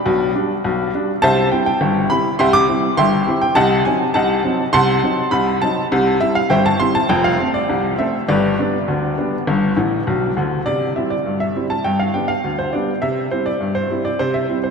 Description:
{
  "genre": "ragtime piano",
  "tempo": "102 BPM",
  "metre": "2/4",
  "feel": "straight",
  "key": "C major",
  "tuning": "A4 = 440 Hz",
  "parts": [
    { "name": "clear upright piano", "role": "solo", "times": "0.0-14.7 s", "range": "F1 to D6", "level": "-15 LUFS", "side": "equal", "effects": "none" }
  ],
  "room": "wet cathedral reverb, RT60 5.4 s",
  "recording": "in a vast, echoing space",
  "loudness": "-15 LUFS",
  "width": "side -5 dB against mid",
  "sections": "0.0-10.7 A section; 10.7-14.7 B section",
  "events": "upright piano fill 9.8-10.7",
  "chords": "0.0 G/B; 1.2 C; 3.6 Cdim7; 5.9 C; 7.1 F; 8.3 G; 10.7 C; 11.8 G; 13.0 C"
}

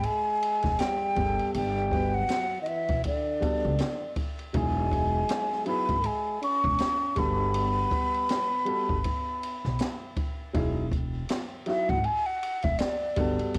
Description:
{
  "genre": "hip hop, jazz-hop",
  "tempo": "80 BPM",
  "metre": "4/4",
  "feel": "swing 58% on 16ths",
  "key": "unclear",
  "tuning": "A4 = 445 Hz",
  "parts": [
    { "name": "breathy mellow concert flute", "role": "melody", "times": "0.0-13.5 s", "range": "D5 to C#6", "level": "-30 LUFS", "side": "equal", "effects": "none" },
    { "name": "breathy trombone", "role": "second line", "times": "0.0-9.8 s", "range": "D3 to C#4", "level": "-38 LUFS", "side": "equal", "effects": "cassette tape" },
    { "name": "upright bass", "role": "bass", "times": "0.0-13.6 s", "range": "E1 to C#2", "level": "-33 LUFS", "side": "equal", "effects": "none" },
    { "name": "open jazz drum kit", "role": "drums", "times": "0.0-13.6 s", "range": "hi-hat, kick drum, ride cymbal, snare drum", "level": "-35 LUFS", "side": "equal", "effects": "none" },
    { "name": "dark upright piano", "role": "accompaniment", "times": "1.2-13.6 s", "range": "F#3 to B4", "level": "-35 LUFS", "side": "equal", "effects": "cassette tape" }
  ],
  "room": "light reverb, studio ambience",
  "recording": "home recording on cassette",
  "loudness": "-28 LUFS",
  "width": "mono",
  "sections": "0.0-10.5 A section; 10.5-13.6 B section",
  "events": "flute solo 10.5-13.6",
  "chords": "0.0 E; 1.2 Gmaj9; 4.5 Emaj9; 7.2 Gmaj9; 10.5 Emaj9"
}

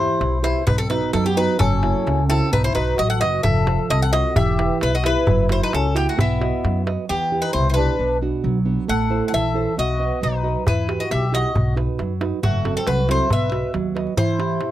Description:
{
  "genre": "greek folk, Greek bouzouki band",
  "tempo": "133 BPM",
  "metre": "2/4",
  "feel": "straight",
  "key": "E harmonic minor",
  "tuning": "A4 = 443 Hz",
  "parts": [
    { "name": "Greek bouzouki", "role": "melody", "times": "0.0-14.7 s", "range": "E4 to F#5", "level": "-23 LUFS", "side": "equal", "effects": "none" },
    { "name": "mellow accordion", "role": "second line", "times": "0.0-14.7 s", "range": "A3 to B4", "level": "-26 LUFS", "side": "left 6 dB", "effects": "none" },
    { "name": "nylon-string guitar", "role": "accompaniment", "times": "0.0-14.7 s", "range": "B2 to D#5", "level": "-24 LUFS", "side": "right 6 dB", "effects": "none" },
    { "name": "upright bass", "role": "bass", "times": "0.0-14.0 s", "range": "E1 to F#2", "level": "-22 LUFS", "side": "left 1 dB", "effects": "none" },
    { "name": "darbuka", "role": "percussion", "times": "0.1-7.0, 10.7-14.7 s", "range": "none", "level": "-23 LUFS", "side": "equal", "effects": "none" }
  ],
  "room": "light reverb",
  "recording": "dry, close 1970s-style studio recording",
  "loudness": "-18 LUFS",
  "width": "side -13 dB against mid",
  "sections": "0.0-7.1 A section; 7.1-14.2 B section",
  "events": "speeding up 0.0-14.7",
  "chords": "0.0 Em; 0.7 B; 1.6 F#7; 2.5 B; 3.4 F; 4.4 Em; 5.3 F#7; 6.2 B; 7.1 Em; 8.0 Bm; 8.9 Am; 9.8 B; 10.7 Emadd9; 11.6 B; 12.4 F#dim; 13.3 B; 14.2 Em"
}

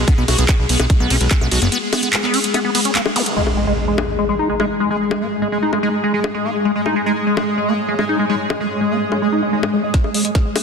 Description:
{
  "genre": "psychedelic trance",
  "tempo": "146 BPM",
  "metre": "4/4",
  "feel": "straight",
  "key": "G# minor",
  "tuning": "A4 = 440 Hz",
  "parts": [
    { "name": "pulsing gated texture", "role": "sustained chords", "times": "0.0-10.6 s", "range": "G#3 to G#4", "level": "-23 LUFS", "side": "left 3 dB", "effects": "chorus, built-in reverb, sidechain pumping" },
    { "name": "fat analog bass", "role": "bass", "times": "0.0-1.7 s", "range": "F#1 to B1", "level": "-17 LUFS", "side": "equal", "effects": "none" },
    { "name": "liquid acid bass", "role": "riff", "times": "0.1-10.6 s", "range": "G#3 to F#4", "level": "-20 LUFS", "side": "moving between left 3 dB and right 4 dB", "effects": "phaser, auto-pan, sidechain pumping, ping-pong delay" },
    { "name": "drum and bass drum kit", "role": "drums", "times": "0.1-10.6 s", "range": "bongos, handclaps, hi-hat, ride cymbal, snare drum", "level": "-22 LUFS", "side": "left 2 dB", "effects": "none" },
    { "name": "electronic kick drum", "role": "drums", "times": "0.1-1.4, 9.9-10.4 s", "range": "none", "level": "-15 LUFS", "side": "equal", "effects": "none" },
    { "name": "zap, impact, swell and riser", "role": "sound effects", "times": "3.2-5.0, 9.3-10.6 s", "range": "none", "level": "-24 LUFS", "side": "equal", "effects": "none" },
    { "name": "granular cloud pad", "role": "texture", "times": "4.8-10.6 s", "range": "G#3 to D#6", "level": "-23 LUFS", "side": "right 2 dB", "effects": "built-in reverb, sidechain pumping" }
  ],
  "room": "moderate lush hall reverb, RT60 1.8 s",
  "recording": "dense, heavily limited modern master",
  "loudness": "-15 LUFS",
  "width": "side -5 dB against mid",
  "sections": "0.0-3.4 A section; 3.4-9.9 B section",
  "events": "drop 0.0-3.4; break 1.7-3.4; impact 3.4-5.0; swell 9.3-9.9; drum fill 9.9-10.6",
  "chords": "0.0 B5; 3.4 G#5"
}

